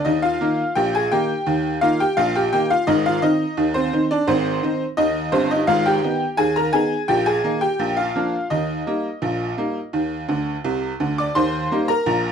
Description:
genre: ragtime piano.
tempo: 85 BPM.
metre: 2/4.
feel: straight.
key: Eb major.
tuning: A4 = 440 Hz.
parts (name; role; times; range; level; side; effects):
tack piano; solo; 0.0-12.3 s; G1 to D6; -18 LUFS; equal; none.
room: moderate studio reverb, RT60 0.6 s.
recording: dark, warm production.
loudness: -18 LUFS.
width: side -7 dB against mid.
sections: 0.0-11.4 A section.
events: honky-tonk piano fill 10.3-11.4.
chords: 0.0 Eb; 2.9 Ab; 5.7 Abm; 7.1 Eb/Bb; 7.8 Bb; 8.5 Eb.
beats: | 0.05 0.75 | 1.46 2.17 | 2.87 3.57 | 4.28 4.98 | 5.68 6.38 | 7.09 7.79 | 8.50 9.22 | 9.93 10.64 | 11.36 12.06.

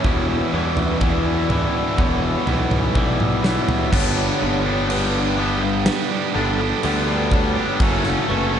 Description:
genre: post-rock.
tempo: 62 BPM.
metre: 4/4.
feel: straight.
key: G lydian.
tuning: A4 = 440 Hz.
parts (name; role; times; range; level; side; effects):
twangy electric guitar; arpeggios; 0.0-8.6 s; G2 to D4; -29 LUFS; left 2 dB; spring reverb, tape echo, slapback echo.
vibraphone with medium mallets; arpeggios; 0.0-8.6 s; A4 to D5; -31 LUFS; right 3 dB; tape echo, slapback echo.
biting overdriven guitar; riff; 0.0-8.6 s; E2 to D4; -24 LUFS; left 9 dB; slapback echo.
tight distorted guitar; riff; 0.0-8.6 s; F#2 to A4; -24 LUFS; right 9 dB; distortion.
fuzz picked electric bass; bass; 0.0-8.6 s; E1 to E2; -24 LUFS; equal; overdrive.
huge arena drum kit; drums; 0.0-8.2 s; crash cymbal, kick drum, snare drum, toms; -23 LUFS; equal; none.
room: moderate lush hall reverb, RT60 2.6 s.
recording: big arena sound, nothing above 10.5 kHz.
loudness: -17 LUFS.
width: side -8 dB against mid.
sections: 0.0-3.9 A section; 3.9-8.6 B section.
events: build-up 0.0-3.9; drum fill 3.0-3.9.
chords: 0.0 Em; 3.9 G; 7.8 F#m.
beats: | 0.04 1.01 1.98 2.95 | 3.92 4.89 5.86 6.83 | 7.80.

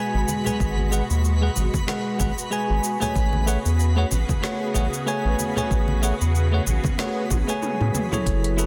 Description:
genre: sunset chillout.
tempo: 94 BPM.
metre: 4/4.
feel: swing 56% on 16ths.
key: unclear.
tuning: A4 = 440 Hz.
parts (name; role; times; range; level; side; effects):
bell-like tine electric piano; accompaniment; 0.0-8.7 s; F#3 to G#5; -28 LUFS; equal; tape echo.
soft string machine; sustained chords; 0.0-8.7 s; A2 to G#4; -34 LUFS; equal; phaser, ensemble chorus.
twinkling granular texture; texture; 0.0-8.3 s; B4 to B5; -39 LUFS; equal; built-in reverb.
round analog bass; bass; 0.1-8.7 s; F#1 to A2; -24 LUFS; equal; none.
deep house drum kit; drums; 0.3-8.7 s; hi-hat, shaker, snare drum, toms; -34 LUFS; equal; none.
congas; percussion; 0.3-8.2 s; none; -33 LUFS; equal; none.
electronic kick drum; drums; 0.6-8.4 s; none; -28 LUFS; equal; none.
room: light reverb.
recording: dense, heavily limited modern master.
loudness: -23 LUFS.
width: mono.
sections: 0.0-8.3 A section.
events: drum fill 7.3-8.3; kick drops out 7.6-8.3.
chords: 0.0 G#m7; 3.2 Amaj13.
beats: | 0.60 1.24 1.88 2.52 | 3.16 3.79 4.43 5.07 | 5.71 6.35 6.99 7.62 | 8.26.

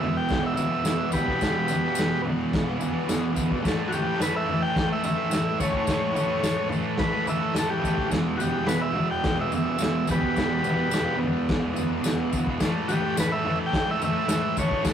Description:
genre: garage rock duo or trio.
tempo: 107 BPM.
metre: 4/4.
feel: straight.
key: unclear.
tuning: A4 = 439 Hz.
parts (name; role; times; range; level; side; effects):
overdriven combo organ; melody; 0.0-14.9 s; F#4 to G5; -27 LUFS; equal; spring reverb.
fuzz guitar; riff; 0.0-14.9 s; E2 to A3; -27 LUFS; right 1 dB; distortion.
vintage drum kit; drums; 0.0-14.9 s; kick drum, snare drum, toms; -27 LUFS; left 1 dB; none.
tambourine; percussion; 0.3-14.9 s; none; -39 LUFS; left 5 dB; none.
room: moderate studio reverb, RT60 0.5 s.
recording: rough rehearsal-room recording, warm saturation.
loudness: -22 LUFS.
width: side -9 dB against mid.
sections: 0.0-14.9 A section.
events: none.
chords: 0.0 E5; 3.6 A; 8.1 E5; 12.6 A5.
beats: 0.30 0.86 | 1.42 1.97 2.53 3.09 | 3.65 4.20 4.76 5.32 | 5.88 6.44 7.00 7.56 | 8.12 8.68 9.24 9.80 | 10.36 10.92 11.48 12.04 | 12.61 13.17 13.73 14.29 | 14.85.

